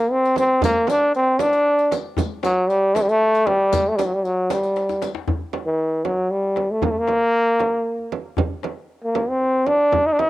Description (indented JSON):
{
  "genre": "Persian modal ensemble",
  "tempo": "77 BPM (dotted quarters)",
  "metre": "6/8",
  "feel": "straight",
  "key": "G avaz esfahan",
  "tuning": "A4 = 439 Hz",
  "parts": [
    { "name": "clear trombone", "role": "melody", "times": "0.0-10.3 s", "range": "E3-48c to Eb4+49c", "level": "-17 LUFS", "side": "equal", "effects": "cassette tape" },
    { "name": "tombak", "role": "percussion", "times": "0.1-10.3 s", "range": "none", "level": "-28 LUFS", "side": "left 4 dB", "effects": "none" },
    { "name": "riq", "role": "percussion", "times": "0.3-5.1 s", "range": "none", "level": "-35 LUFS", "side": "left 11 dB", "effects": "none" },
    { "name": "frame drum", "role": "percussion", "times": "0.4-10.3 s", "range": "none", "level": "-27 LUFS", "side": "right 7 dB", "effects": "none" }
  ],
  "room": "light reverb, small room ambience",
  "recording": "home recording on cassette",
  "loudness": "-17 LUFS",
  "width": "side -17 dB against mid",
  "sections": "0.0-5.3 A section; 5.3-10.3 B section",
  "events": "drum fill 4.8-5.3",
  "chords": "none"
}